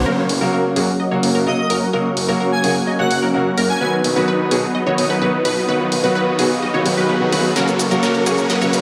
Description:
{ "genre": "EDM, festival progressive house", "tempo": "128 BPM", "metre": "4/4", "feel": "straight", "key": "F# major", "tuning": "A4 = 440 Hz", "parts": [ { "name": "lush unison pad", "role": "sustained chords", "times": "0.0-8.8 s", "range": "A#4 to D#6", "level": "-30 LUFS", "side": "equal", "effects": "chorus" }, { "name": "detuned saw bass", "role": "bass", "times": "0.0-8.8 s", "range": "F#1 to B1", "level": "-27 LUFS", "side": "equal", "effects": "chorus, high-pass filter" }, { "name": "riser", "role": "sound effects", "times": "0.0-8.8 s", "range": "none", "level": "-30 LUFS", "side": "equal", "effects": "none" }, { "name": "bright grand piano", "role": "accompaniment", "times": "0.1-8.8 s", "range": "C#3 to F#4", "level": "-23 LUFS", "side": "equal", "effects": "tape echo" }, { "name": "unison pluck", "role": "arpeggios", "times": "0.1-8.8 s", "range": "G#4 to D#5", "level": "-26 LUFS", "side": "equal", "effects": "phaser, tape echo" }, { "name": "supersaw chords", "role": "riff", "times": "0.1-8.8 s", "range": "F#3 to D#5", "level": "-22 LUFS", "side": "equal", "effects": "cassette tape, low-pass filter, tape echo" }, { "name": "big-room dance drum kit", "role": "drums", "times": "0.3-8.8 s", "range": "hi-hat, shaker, snare drum", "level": "-28 LUFS", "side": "equal", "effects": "high-pass filter on hats, studio reverb, high-pass filter on snare, high-pass filter on perc" }, { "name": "airy dreamy lead", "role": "melody", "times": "1.5-3.9 s", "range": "D#5 to G#5", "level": "-26 LUFS", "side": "equal", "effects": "chorus, tape echo" } ], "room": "wet plate reverb, RT60 2.5 s", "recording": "dreamy mix soaked in reverb, high-pass filter", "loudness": "-17 LUFS", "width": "mono", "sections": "0.1-8.8 A section", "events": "build-up 0.1-8.8; filter sweep on supersaw synth 0.1-8.8; filter sweep on analog synth pad 0.1-8.8; drum fill 7.6-8.8", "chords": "0.1 F#; 3.8 B; 7.6 F#" }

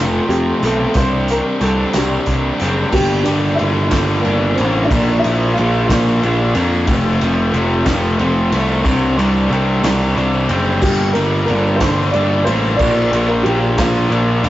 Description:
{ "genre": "indie rock", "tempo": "61 BPM (dotted quarters)", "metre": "6/8", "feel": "straight", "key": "Bb major", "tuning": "A4 = 440 Hz", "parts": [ { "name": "dark upright piano", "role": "melody", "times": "0.0-6.6, 10.8-14.5 s", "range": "Bb3 to D5", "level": "-20 LUFS", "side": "equal", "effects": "none" }, { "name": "overdriven electric guitar", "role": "riff", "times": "0.0-14.5 s", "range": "F2 to D4", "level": "-22 LUFS", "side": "right 2 dB", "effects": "none" }, { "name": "sludgy distorted guitar", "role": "riff", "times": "0.0-14.5 s", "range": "F3 to D4", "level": "-21 LUFS", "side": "left 2 dB", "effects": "overdrive" }, { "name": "fuzz picked electric bass", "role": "bass", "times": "0.0-14.5 s", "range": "E1 to F2", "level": "-17 LUFS", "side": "equal", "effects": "overdrive" }, { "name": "loose indie drum kit", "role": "drums", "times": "0.3-14.5 s", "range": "crash cymbal, hi-hat, kick drum, ride cymbal, snare drum", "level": "-22 LUFS", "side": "equal", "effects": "none" }, { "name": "tambourine", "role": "percussion", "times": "1.0-14.5 s", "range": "none", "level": "-42 LUFS", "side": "right 3 dB", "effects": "none" }, { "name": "mellow tine electric piano", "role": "second line", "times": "2.9-6.6, 10.8-14.5 s", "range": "Bb4 to D6", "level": "-29 LUFS", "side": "right 1 dB", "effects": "none" } ], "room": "light reverb", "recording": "rough rehearsal-room recording, warm saturation, nothing above 7.6 kHz", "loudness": "-13 LUFS", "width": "side -14 dB against mid", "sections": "0.0-2.9 A section; 2.9-14.5 B section", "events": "none", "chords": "0.0 F; 1.0 Csus2; 2.9 Gm; 4.9 Bb; 6.9 F; 8.9 Csus2; 10.8 Gm; 12.8 Bb" }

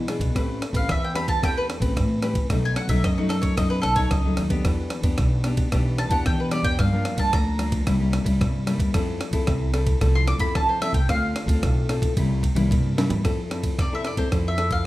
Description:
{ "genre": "samba and choro", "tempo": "112 BPM", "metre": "4/4", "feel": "straight", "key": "C major", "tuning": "A4 = 441 Hz", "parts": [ { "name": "nylon-string guitar", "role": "accompaniment", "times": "0.0-14.9 s", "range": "F#2 to B4", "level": "-27 LUFS", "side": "left 2 dB", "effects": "none" }, { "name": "upright bass", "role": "bass", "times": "0.0-14.9 s", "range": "A1 to F3", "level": "-25 LUFS", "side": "equal", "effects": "none" }, { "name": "breakbeat sampler-style drum kit", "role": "drums", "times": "0.1-14.8 s", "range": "kick drum, ride cymbal, rim click, snare drum, toms", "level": "-25 LUFS", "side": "equal", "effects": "none" }, { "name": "mandolin", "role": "melody", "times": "0.8-14.9 s", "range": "F#4 to D6", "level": "-26 LUFS", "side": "right 1 dB", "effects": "none" } ], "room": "moderate large studio reverb, RT60 1.4 s", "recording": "none", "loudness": "-20 LUFS", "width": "side -17 dB against mid", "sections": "0.0-13.2 A section; 13.2-14.9 B section", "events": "mandolin solo 0.0-13.2; drum fill 12.2-13.2", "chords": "0.4 Am9; 2.5 B7; 4.7 Em7; 6.8 Gm7; 7.9 C7; 8.9 Fmaj7; 11.1 Dm7; 12.2 C7; 13.2 Fmaj7" }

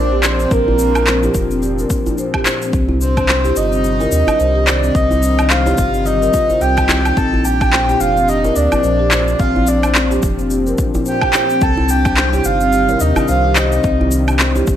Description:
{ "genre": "organic downtempo", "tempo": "108 BPM", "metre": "4/4", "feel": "swing 58% on 16ths", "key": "C minor", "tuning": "A4 = 441 Hz", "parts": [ { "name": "breathy flute-like synth lead", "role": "melody", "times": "0.0-14.1 s", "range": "Bb4 to A5", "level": "-18 LUFS", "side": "right 1 dB", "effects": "lush chorus, ping-pong delay" }, { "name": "warm analog pad", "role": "sustained chords", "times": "0.0-14.8 s", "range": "Bb2 to D4", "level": "-24 LUFS", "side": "left 1 dB", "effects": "lush chorus, sidechain pumping" }, { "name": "marimba with soft mallets", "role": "arpeggios", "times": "0.0-14.8 s", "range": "C4 to C5", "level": "-19 LUFS", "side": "left 1 dB", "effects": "ping-pong delay" }, { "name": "warm sub bass", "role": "bass", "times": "0.0-14.8 s", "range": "F1 to Eb2", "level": "-18 LUFS", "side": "equal", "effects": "none" }, { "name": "electronic handclaps, shaker and woodblock", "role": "drums", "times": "0.2-14.8 s", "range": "none", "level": "-19 LUFS", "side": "equal", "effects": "overdrive" }, { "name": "djembe", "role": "percussion", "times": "0.2-14.6 s", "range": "none", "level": "-24 LUFS", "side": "right 1 dB", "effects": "none" }, { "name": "electronic kick drum", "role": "drums", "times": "0.5-14.8 s", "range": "none", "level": "-19 LUFS", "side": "equal", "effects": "overdrive" } ], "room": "light reverb", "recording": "none", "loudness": "-12 LUFS", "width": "side -10 dB against mid", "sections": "0.0-14.8 A section", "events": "none", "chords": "0.0 Bb; 2.7 Cm; 7.2 Bb; 11.6 Cm" }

